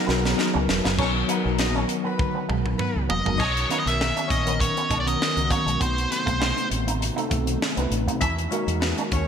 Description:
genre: polished 1980s jazz-funk pop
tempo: 100 BPM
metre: 4/4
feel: swing 54% on 16ths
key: B major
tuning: A4 = 440 Hz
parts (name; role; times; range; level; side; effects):
- warm horn section; second line; 0.0-9.3 s; F#3 to E5; -32 LUFS; left 3 dB; ping-pong delay
- mellow tine electric piano; accompaniment; 0.0-9.3 s; D#3 to B4; -27 LUFS; left 1 dB; medium stereo tremolo, ensemble chorus
- warm analog pad; sustained chords; 0.0-9.3 s; C3 to A#4; -36 LUFS; left 2 dB; chorus
- electric guitar with an envelope filter; riff; 0.1-9.2 s; G#3 to D#4; -33 LUFS; right 5 dB; lush chorus
- fingered electric bass with an envelope filter; bass; 0.1-9.3 s; E1 to E2; -27 LUFS; equal; none
- tight funk drum kit; drums; 0.1-9.3 s; crash cymbal, hi-hat, kick drum, snare drum, toms; -27 LUFS; equal; gated reverb
- nasal lead guitar with a parked wah; melody; 3.1-6.7 s; C5 to E5; -26 LUFS; right 1 dB; overdrive
room: moderate lush hall reverb, RT60 2.1 s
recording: bright 1980s-style digital production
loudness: -21 LUFS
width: side -7 dB against mid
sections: 1.0-3.4 A section; 3.4-9.3 B section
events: drum fill 0.0-1.0, 2.2-3.4; band accent 0.0-1.0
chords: 0.0 F#; 3.4 Bmaj9; 5.8 B7b9; 8.2 Emaj9#11

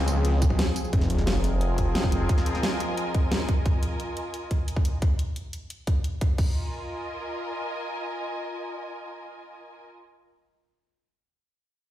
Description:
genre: dark technical drum and bass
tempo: 176 BPM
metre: 4/4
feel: straight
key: F minor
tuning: A4 = 443 Hz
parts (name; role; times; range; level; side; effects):
- sweeping resonant pad; sustained chords; 0.0-3.6 s; F3 to Ab4; -32 LUFS; left 1 dB; chorus, sidechain pumping
- snarling distorted saw bass; bass; 0.0-2.3 s; F1 to Db2; -24 LUFS; equal; distortion, overdrive, sidechain pumping
- dubstep drum kit; drums; 0.1-6.5 s; crash cymbal, hi-hat, snare drum, tambourine; -31 LUFS; equal; none
- electronic kick drum; drums; 0.4-6.5 s; none; -23 LUFS; equal; none
- sub drop; sound effects; 0.9-2.3 s; none; -30 LUFS; right 1 dB; none
- muted studio string section; texture; 0.9-9.9 s; F4 to Ab5; -34 LUFS; equal; sidechain pumping
room: light reverb, digital ambience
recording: played on a big sound system in a bare room, large studio reverb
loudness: -24 LUFS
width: side -13 dB against mid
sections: 0.9-6.4 A section; 6.4-9.1 B section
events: break 0.6-0.9; impact 0.9-2.3; filter sweep on detuned saw bass 0.9-2.3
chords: 0.0 Db; 0.9 Fm

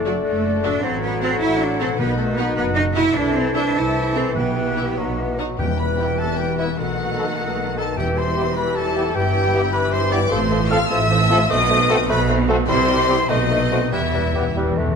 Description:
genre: classical, dramatic, fast romantic movement for symphony orchestra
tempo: 101 BPM (dotted quarters)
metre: 6/8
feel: rubato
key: E minor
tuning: A4 = 435 Hz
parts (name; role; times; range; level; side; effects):
- silver concert flute; second line; 0.0-14.6 s; D5 to F6; -28 LUFS; left 1 dB; none
- warm clarinet; second line; 0.0-14.9 s; G4 to C5; -31 LUFS; left 2 dB; none
- warm oboe; second line; 0.0-14.6 s; D4 to F5; -30 LUFS; right 1 dB; none
- warm symphonic violin section; second line; 0.0-14.6 s; D#4 to F5; -29 LUFS; left 5 dB; none
- mellow bassoon; accompaniment; 0.0-15.0 s; D#3 to A3; -27 LUFS; right 2 dB; none
- warm French horn section; sustained chords; 0.0-14.4 s; G3 to D5; -28 LUFS; left 5 dB; none
- concert harp; arpeggios; 0.0-15.0 s; E2 to G5; -27 LUFS; left 10 dB; none
- clear studio cello section; bass; 0.0-15.0 s; E2 to E4; -24 LUFS; right 3 dB; none
- rich symphonic double bass section; bass; 0.0-15.0 s; E1 to C2; -26 LUFS; right 4 dB; none
- clear symphonic violin section; melody; 0.1-14.6 s; D5 to F6; -28 LUFS; left 3 dB; none
- clear symphonic viola section; accompaniment; 0.1-15.0 s; E3 to A4; -28 LUFS; right 2 dB; none
- timpani; percussion; 2.0-8.5, 13.9-14.9 s; E2 to B2; -28 LUFS; equal; none
- dark trumpet; stabs; 6.0-14.4 s; F#4 to B4; -29 LUFS; right 3 dB; none
room: light reverb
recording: none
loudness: -17 LUFS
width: side -6 dB against mid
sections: 0.0-5.6 A section; 5.6-15.0 B section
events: timpani fill 13.9-15.0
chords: 0.0 D/F#; 0.8 F#dim/A; 2.0 B; 3.2 Am/C; 4.4 Em/B; 5.0 B; 5.6 Em; 6.8 B7; 8.0 Em; 9.1 Em/G; 10.3 F/A; 11.5 B7b9; 12.7 C; 13.3 B7b9; 13.9 Em

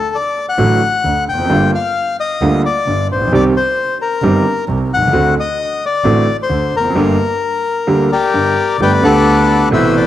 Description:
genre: tango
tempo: 132 BPM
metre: 4/4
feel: rubato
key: G minor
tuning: A4 = 438 Hz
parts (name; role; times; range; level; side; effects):
- bandoneon; melody; 0.0-10.1 s; G4 to G5; -15 LUFS; left 4 dB; none
- clear concert grand piano; accompaniment; 0.6-10.1 s; G1 to G4; -15 LUFS; right 2 dB; none
- clear double bass; bass; 0.6-10.1 s; F1 to D2; -20 LUFS; right 2 dB; none
room: light reverb, studio ambience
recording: home recording on cassette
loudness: -12 LUFS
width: side -12 dB against mid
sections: 0.0-8.8 A section; 8.8-10.1 B section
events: none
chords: 0.0 D; 1.5 Gm7; 3.3 Cm; 5.1 D7; 7.0 Gm; 8.8 Gadd9

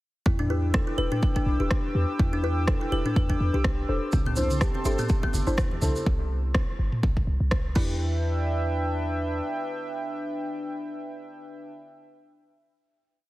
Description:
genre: afro house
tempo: 124 BPM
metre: 4/4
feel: swing 56% on 16ths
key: E minor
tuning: A4 = 444 Hz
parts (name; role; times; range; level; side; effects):
- warm analog pad; sustained chords; 0.5-11.7 s; D4 to E6; -33 LUFS; equal; chorus, sidechain pumping
- kalimba; arpeggios; 0.3-8.2 s; B3 to B4; -32 LUFS; left 1 dB; sidechain pumping, tape echo
- warm 808-style bass; bass; 0.3-9.4 s; E1 to E2; -27 LUFS; equal; sidechain pumping
- electronic kick drum; drums; 0.3-7.9 s; none; -25 LUFS; equal; studio reverb
- afro-pop drum kit; drums; 0.4-7.9 s; crash cymbal, rim click, toms; -33 LUFS; equal; studio reverb
- deep mellow chord stab; stabs; 0.5-11.7 s; D4 to C5; -34 LUFS; left 1 dB; chorus, sidechain pumping, tape echo
- congas; percussion; 4.1-5.9 s; none; -34 LUFS; equal; none
- tube shaker; percussion; 4.1-6.0 s; none; -38 LUFS; right 2 dB; none
room: little or no reverb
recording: heavily compressed radio sound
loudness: -24 LUFS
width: side -17 dB against mid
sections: 0.3-8.0 groove; 8.0-11.9 final hit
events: filter sweep on synth stab 0.3-6.1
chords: 0.3 Em7; 4.1 C69; 7.8 Em7

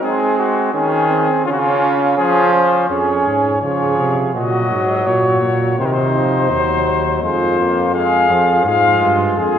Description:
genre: classical, imitative canzona for brass ensemble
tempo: 83 BPM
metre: 4/4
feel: straight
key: Db major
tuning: A4 = 445 Hz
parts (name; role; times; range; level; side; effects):
- mellow trumpet; melody; 0.0-9.6 s; F4 to F5; -18 LUFS; left 5 dB; none
- mellow flugelhorn; second line; 0.0-9.6 s; C4 to Ab4; -19 LUFS; right 2 dB; none
- bright trombone; accompaniment; 0.0-9.6 s; Db3 to Db4; -19 LUFS; right 2 dB; none
- warm bass trombone; bass; 2.9-9.6 s; Eb2 to Db3; -19 LUFS; right 1 dB; none
room: wet concert hall reverb, RT60 1.9 s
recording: recorded in a church or concert hall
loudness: -13 LUFS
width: side -8 dB against mid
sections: 0.0-2.9 A section; 2.9-9.6 B section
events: none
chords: 0.0 Ab; 1.4 Db; 2.9 Db/F; 4.3 Gb; 5.8 Cdim; 7.2 Fm

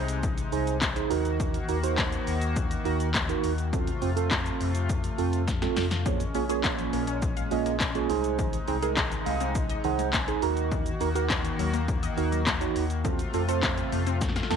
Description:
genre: dance-pop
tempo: 103 BPM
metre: 4/4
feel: straight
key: unclear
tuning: A4 = 445 Hz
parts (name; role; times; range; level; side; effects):
- mellow tine electric piano; accompaniment; 0.0-14.6 s; Bb3 to Bb5; -30 LUFS; right 14 dB; phaser, sidechain pumping
- chorused pulse-width pad; sustained chords; 0.0-14.6 s; Bb2 to Gb4; -33 LUFS; left 2 dB; sidechain pumping
- warm sub bass; bass; 0.0-14.6 s; Bb1 to F2; -31 LUFS; left 2 dB; sidechain pumping
- punchy analog drum machine; drums; 0.1-14.6 s; handclaps, hi-hat, kick drum, shaker, snare drum; -29 LUFS; left 2 dB; none
- wide unison pluck; arpeggios; 6.1-14.6 s; Eb3 to F5; -36 LUFS; left 16 dB; auto-pan, sidechain pumping, slapback echo
room: light reverb, digital ambience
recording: 1960s-style stereo with parts hard left and right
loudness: -25 LUFS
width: side -7 dB against mid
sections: 0.0-14.6 A section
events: drum fill 5.5-6.1, 14.2-14.6; tine electric piano fill 9.0-10.7, 14.2-14.6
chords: 0.0 Ab/C; 1.1 Ebm; 3.7 F; 6.1 Bbm7; 8.1 Ab/C; 10.4 Ebm; 13.0 F

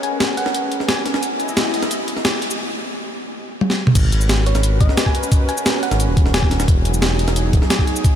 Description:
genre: liquid drum and bass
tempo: 176 BPM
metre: 4/4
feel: straight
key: G# minor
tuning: A4 = 442 Hz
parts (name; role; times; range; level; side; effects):
- thumb-piano-like synth pluck; melody; 0.0-1.2, 4.5-6.7 s; C#5 to G#5; -27 LUFS; right 1 dB; chorus, cassette tape, tape echo
- warm analog pad; sustained chords; 0.0-8.2 s; F#3 to F#5; -25 LUFS; equal; wide subtle chorus, sidechain pumping
- breakbeat sampler-style drum kit; drums; 0.0-8.1 s; cabasa, crash cymbal, hi-hat, snare drum, toms; -20 LUFS; equal; none
- smooth synth bass; bass; 4.0-7.6 s; D#1 to G#1; -18 LUFS; equal; none
- electronic kick drum; drums; 4.0-8.1 s; none; -15 LUFS; equal; none
room: moderate huge ambient reverb, RT60 5.5 s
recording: dreamy mix soaked in reverb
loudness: -15 LUFS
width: side -10 dB against mid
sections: 0.0-4.0 A section; 4.0-8.2 B section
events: build-up 0.0-4.0; drum fill 3.6-4.0; drop 4.0-8.2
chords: 0.0 G#m11; 1.2 Emaj9; 4.0 G#m11; 6.7 Emaj9

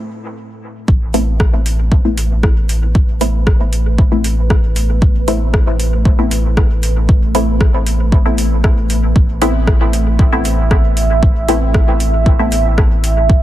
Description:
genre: dub techno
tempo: 116 BPM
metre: 4/4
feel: straight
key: A minor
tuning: A4 = 440 Hz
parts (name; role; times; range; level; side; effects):
- deep dark ambient pad; sustained chords; 0.0-13.4 s; A3 to E5; -23 LUFS; right 3 dB; chorus, built-in reverb, sidechain pumping
- soft dub sub bass; bass; 0.9-13.4 s; A1; -16 LUFS; equal; sidechain pumping
- electronic kick drum; drums; 0.9-13.4 s; none; -12 LUFS; equal; overdrive
- filtered dub chord stab; stabs; 1.1-12.7 s; A3 to E4; -20 LUFS; left 1 dB; chorus, phaser, sidechain pumping, dub echo
- deep house drum kit; drums; 1.1-13.1 s; hi-hat, rim click; -23 LUFS; equal; overdrive, dub echo
room: little or no reverb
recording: none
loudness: -11 LUFS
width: side -14 dB against mid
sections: 0.9-13.4 A section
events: break 0.0-0.9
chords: 0.0 N.C.; 0.9 Amadd9

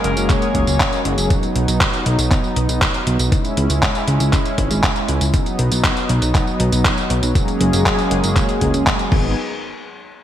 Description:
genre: italo disco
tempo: 119 BPM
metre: 4/4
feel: straight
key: unclear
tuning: A4 = 440 Hz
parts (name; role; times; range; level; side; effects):
- raspy alto saxophone; melody; 0.0-1.1 s; A#4 to C#5; -26 LUFS; left 2 dB; ping-pong delay
- warm analog pad; sustained chords; 0.0-9.4 s; F#3 to G#4; -21 LUFS; equal; chorus, tremolo
- fat analog bass; bass; 0.0-9.4 s; F#1 to C#2; -19 LUFS; equal; none
- detuned 8-bit digital drum machine; drums; 0.0-9.2 s; crash cymbal, handclaps, hi-hat, tambourine; -21 LUFS; equal; gated reverb
- electronic kick drum; drums; 0.3-9.2 s; none; -19 LUFS; equal; overdrive
room: moderate lush hall reverb, RT60 2.1 s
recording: bright 1980s-style digital production, vinyl crackle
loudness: -15 LUFS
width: side -11 dB against mid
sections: 0.0-9.4 A section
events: none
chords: 0.0 F#add9; 1.3 B; 3.3 C#m; 5.3 B; 7.4 F#add9; 9.1 G#m; 9.4 N.C.

